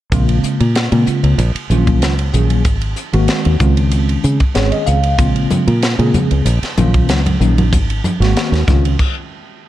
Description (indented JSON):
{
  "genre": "electric jazz fusion",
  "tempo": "95 BPM",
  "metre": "4/4",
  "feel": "swing 53% on 16ths",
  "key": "Bb minor",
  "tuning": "A4 = 441 Hz",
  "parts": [
    { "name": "mellow tine electric piano", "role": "accompaniment", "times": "0.1-8.9 s", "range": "Db3 to F5", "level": "-18 LUFS", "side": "equal", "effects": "medium stereo tremolo, lush chorus" },
    { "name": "fingered electric bass", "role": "bass", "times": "0.1-9.0 s", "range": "Ab1 to Db3", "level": "-14 LUFS", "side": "equal", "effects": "none" },
    { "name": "tight funk drum kit", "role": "drums", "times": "0.1-9.2 s", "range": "crash cymbal, hi-hat, kick drum, ride cymbal, snare drum", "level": "-19 LUFS", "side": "equal", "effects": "none" },
    { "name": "congas", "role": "percussion", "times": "5.5-8.8 s", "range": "none", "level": "-19 LUFS", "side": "equal", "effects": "none" }
  ],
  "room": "light reverb",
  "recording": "dark, warm production",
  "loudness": "-12 LUFS",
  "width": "side -14 dB against mid",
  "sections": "0.1-9.7 A section",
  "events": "tine electric piano fill 4.2-5.2; stop 9.0-9.7",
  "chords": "0.1 Bbm7; 1.4 Ebm9/Bb; 2.7 Ab7; 3.6 Dbmaj7; 5.2 Bbm7; 6.5 Ebm9/Bb; 7.7 Ab7; 8.7 Dbmaj7"
}